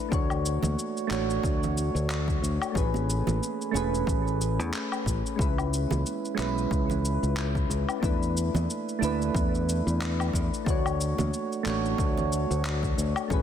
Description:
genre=sunset chillout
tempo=91 BPM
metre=4/4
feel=swing 56% on 16ths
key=unclear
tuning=A4 = 441 Hz
part: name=soft electric-piano-like synth keys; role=accompaniment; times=0.0-13.4 s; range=G#3 to C#5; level=-29 LUFS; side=moving between left 8 dB and right 7 dB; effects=chorus, auto-pan, low-pass filter, tape echo
part: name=fingered electric bass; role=bass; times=0.1-13.4 s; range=E1 to E2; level=-28 LUFS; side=equal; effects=none
part: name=electronic kick drum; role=drums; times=0.1-13.4 s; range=none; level=-30 LUFS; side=equal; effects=overdrive
part: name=electronic shaker, woodblock and handclaps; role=drums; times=0.1-13.4 s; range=none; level=-36 LUFS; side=left 2 dB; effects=soft clipping on snare
part: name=congas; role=percussion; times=0.6-12.3 s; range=none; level=-36 LUFS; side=right 5 dB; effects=none
room=light reverb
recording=dense, heavily limited modern master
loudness=-25 LUFS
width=side -9 dB against mid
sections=0.0-13.4 A section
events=none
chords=0.1 Dmaj7; 2.8 Amaj9; 5.4 C#m7; 8.0 E7sus4; 10.7 Dmaj7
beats=| 0.12 0.78 1.44 2.10 | 2.75 3.42 4.07 4.73 | 5.39 6.05 6.71 7.37 | 8.03 8.69 9.35 10.01 | 10.67 11.33 11.99 12.65 | 13.30

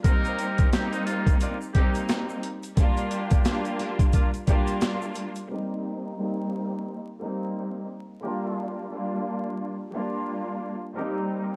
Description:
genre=hip hop, boom-bap hip-hop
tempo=88 BPM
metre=4/4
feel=swing 59% on 16ths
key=C minor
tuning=A4 = 441 Hz
part: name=trumpet with metal mute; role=melody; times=0.0-1.9 s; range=Eb4 to Bb4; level=-35 LUFS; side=equal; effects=high-pass filter, low-pass filter
part: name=bright studio string section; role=accompaniment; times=0.0-11.6 s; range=G3 to F4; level=-31 LUFS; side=equal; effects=cassette tape, high-pass filter, low-pass filter
part: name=boom bap sampler-style drum kit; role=drums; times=0.0-5.5 s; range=hi-hat, kick drum, snare drum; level=-25 LUFS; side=equal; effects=overdrive
part: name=egg shaker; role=percussion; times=0.1-5.5 s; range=none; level=-53 LUFS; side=equal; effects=none
part: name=bright horn section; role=stabs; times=0.2-11.2 s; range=Bb3 to Bb4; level=-40 LUFS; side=equal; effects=high-pass filter, low-pass filter, delay
room=studio reverb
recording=dark, warm production, vinyl crackle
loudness=-27 LUFS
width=mono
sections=0.0-5.5 A section; 5.5-11.6 B section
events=filter sweep 5.5-11.6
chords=0.0 Cm7; 2.8 Gm7; 5.5 Cm7; 8.2 Gm7; 11.0 Cm7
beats=| 0.04 0.72 1.41 2.09 | 2.77 3.45 4.13 4.82 | 5.50 6.18 6.86 7.54 | 8.22 8.91 9.59 10.27 | 10.95

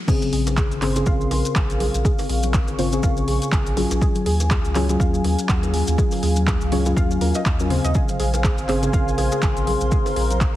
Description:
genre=deep house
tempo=122 BPM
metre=4/4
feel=swing 57% on 16ths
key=Bb minor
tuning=A4 = 441 Hz
part: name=dark analog pad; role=sustained chords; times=0.7-10.6 s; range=C5 to Db6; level=-31 LUFS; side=equal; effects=chorus, vintage 12-bit sampler grit, sidechain pumping
part: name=warbly dusty pluck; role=arpeggios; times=0.1-10.5 s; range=Ab4 to Ab5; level=-30 LUFS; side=right 1 dB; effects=chorus, sidechain pumping, tape echo
part: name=mellow FM electric piano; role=stabs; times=0.1-10.6 s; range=Db3 to C5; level=-24 LUFS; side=left 2 dB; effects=chorus, sidechain pumping, tape echo
part: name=deep house drum kit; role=drums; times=0.1-10.5 s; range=crash cymbal, handclaps, hi-hat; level=-29 LUFS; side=right 1 dB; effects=overdrive, studio reverb
part: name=electronic kick drum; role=drums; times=0.1-10.5 s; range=none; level=-21 LUFS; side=equal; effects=overdrive, studio reverb
part: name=bongos and congas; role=percussion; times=0.1-10.4 s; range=none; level=-34 LUFS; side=right 2 dB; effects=none
part: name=maracas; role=percussion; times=0.1-10.5 s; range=none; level=-35 LUFS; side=left 3 dB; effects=none
part: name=warbly tape-like pad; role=texture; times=0.2-10.6 s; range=Gb3 to C6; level=-33 LUFS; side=left 2 dB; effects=chorus, built-in reverb, sidechain pumping
part: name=round analog bass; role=bass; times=0.3-10.5 s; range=Ab1 to Eb2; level=-23 LUFS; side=equal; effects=sidechain pumping
room=digital ambience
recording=heavily compressed radio sound, multiband compression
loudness=-18 LUFS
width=side -14 dB against mid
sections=0.1-10.6 A section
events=drop 0.1-10.6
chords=0.1 Bbm9; 4.0 Ebm11; 8.0 Bbm9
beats=| 0.08 0.57 1.06 1.56 | 2.05 2.54 3.03 3.52 | 4.01 4.51 5.00 5.49 | 5.98 6.47 6.97 7.46 | 7.95 8.44 8.93 9.43 | 9.92 10.41

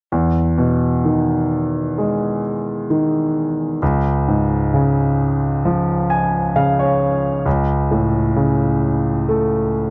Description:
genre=pop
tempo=66 BPM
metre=4/4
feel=straight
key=E major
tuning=A4 = 440 Hz
part: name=clear grand piano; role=accompaniment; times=0.1-9.9 s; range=C#2 to G#5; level=-18 LUFS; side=equal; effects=none
room=light reverb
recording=dry, close 1970s-style studio recording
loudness=-18 LUFS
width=mono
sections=0.1-9.9 A section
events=grand piano fill 5.6-7.5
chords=0.1 Emaj7; 3.8 C#; 7.5 A/C#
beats=| 0.11 1.05 1.97 2.90 | 3.82 4.73 5.64 6.55 | 7.46 8.37 9.29

